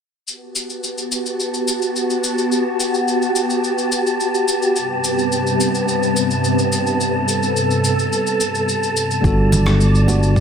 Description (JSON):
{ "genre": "sunset chillout", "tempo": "107 BPM", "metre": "4/4", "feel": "straight", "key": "G major", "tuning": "A4 = 440 Hz", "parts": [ { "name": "soft string machine", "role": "sustained chords", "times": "0.6-10.4 s", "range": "G2 to D5", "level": "-19 LUFS", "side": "equal", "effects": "phaser, ensemble chorus" }, { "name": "electronic shaker and rim click", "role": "drums", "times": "0.3-10.4 s", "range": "none", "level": "-24 LUFS", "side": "left 2 dB", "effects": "none" }, { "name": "wind-like tuned noise texture", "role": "texture", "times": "1.3-10.4 s", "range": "A5", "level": "-25 LUFS", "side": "right 1 dB", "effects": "built-in reverb" }, { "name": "tine electric piano", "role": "accompaniment", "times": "9.2-10.4 s", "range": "G3 to D5", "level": "-18 LUFS", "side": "equal", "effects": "auto-pan" }, { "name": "fingered electric bass", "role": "bass", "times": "9.2-10.4 s", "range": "G1", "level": "-14 LUFS", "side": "equal", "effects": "none" }, { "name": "electronic kick drum", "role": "drums", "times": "9.2-10.4 s", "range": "none", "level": "-18 LUFS", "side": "equal", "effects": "none" }, { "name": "congas", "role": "percussion", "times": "9.5-10.2 s", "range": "none", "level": "-23 LUFS", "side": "right 2 dB", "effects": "none" } ], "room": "moderate plate reverb, RT60 2.3 s", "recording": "none", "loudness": "-16 LUFS", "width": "side -7 dB against mid", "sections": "0.3-10.4 A section", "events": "none", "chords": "0.3 Gmaj7; 4.8 Am9/G; 9.2 Gmaj7", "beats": "| 0.27 0.83 1.39 1.96 | 2.52 3.08 3.64 4.20 | 4.76 5.32 5.88 6.44 | 7.00 7.56 8.12 8.68 | 9.24 9.80 10.37" }